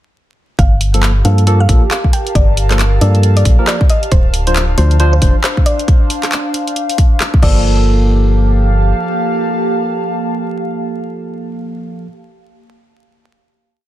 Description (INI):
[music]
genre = UK garage, two-step garage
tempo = 136 BPM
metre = 4/4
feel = swing 60% on 16ths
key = G minor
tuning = A4 = 440 Hz
[part]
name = mallet-like synth pluck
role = melody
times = 0.6-12.1 s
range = C5 to G5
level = -23 LUFS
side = left 1 dB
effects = chorus, vintage 12-bit sampler grit, dub echo
[part]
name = organ-like FM bass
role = bass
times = 0.6-8.9 s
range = D1 to G2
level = -11 LUFS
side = equal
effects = none
[part]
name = electronic kick drum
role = drums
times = 0.6-7.5 s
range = none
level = -11 LUFS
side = equal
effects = none
[part]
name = garage drum kit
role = drums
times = 0.6-7.5 s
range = crash cymbal, handclaps, hi-hat, rim click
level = -19 LUFS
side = equal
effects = none
[part]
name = warbly tape-like pad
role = texture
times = 1.2-11.9 s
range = Bb3 to A5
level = -21 LUFS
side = right 1 dB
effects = chorus, built-in reverb, phaser, sidechain pumping
[part]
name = barky tine electric piano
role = stabs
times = 0.9-12.1 s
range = F3 to C5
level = -19 LUFS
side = right 1 dB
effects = wide subtle chorus, ping-pong delay
[sound]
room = light reverb, digital ambience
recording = dense, heavily limited modern master, vinyl crackle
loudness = -10 LUFS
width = side -13 dB against mid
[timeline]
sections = 0.6-7.6 groove; 7.6-11.2 final chord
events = none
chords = 0.6 Gm9; 4.1 Dm7; 7.4 Gm9